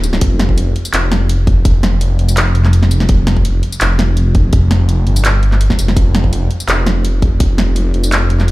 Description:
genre	half-time drum and bass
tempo	167 BPM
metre	4/4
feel	half-time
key	unclear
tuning	A4 = 440 Hz
part	phased detuned saw bass	bass	0.0-8.5 s	F1 to G1	-12 LUFS	equal	phaser
part	drum and bass drum kit	drums	0.0-8.5 s	handclaps, hi-hat, snare drum, tambourine	-18 LUFS	equal	none
part	electronic kick drum	drums	0.2-7.5 s	none	-12 LUFS	equal	none
room	little or no reverb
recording	played on a big sound system in a bare room, large studio reverb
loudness	-10 LUFS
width	side -19 dB against mid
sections	0.2-8.5 A section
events	break 0.0; drop 0.2-8.5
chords	none

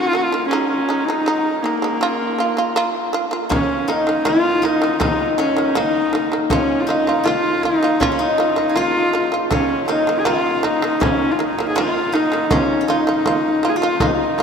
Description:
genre	mongolian traditional, Mongolian folk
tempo	80 BPM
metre	4/4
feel	straight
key	unclear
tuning	A4 = 440 Hz
part	rich horsehead fiddle	melody	0.0-14.4 s	Bb3 to Ab4	-19 LUFS	equal	none
part	shamisen	arpeggios	0.0-14.4 s	Eb3 to F4	-21 LUFS	right 2 dB	none
part	steel-string zither	second line	3.5-14.4 s	Db4 to Ab4	-23 LUFS	left 2 dB	none
part	frame drum	percussion	3.5-14.4 s	none	-26 LUFS	left 1 dB	none
room	wet cathedral reverb, RT60 6.6 s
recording	in a vast, echoing space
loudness	-16 LUFS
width	side -6 dB against mid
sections	0.0-3.5 A section; 3.5-14.4 B section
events	none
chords	0.0 Eb5; 0.5 Ab5; 2.0 Bb5; 3.5 Eb5; 6.5 Bb5; 9.5 Eb5; 12.5 Bb5

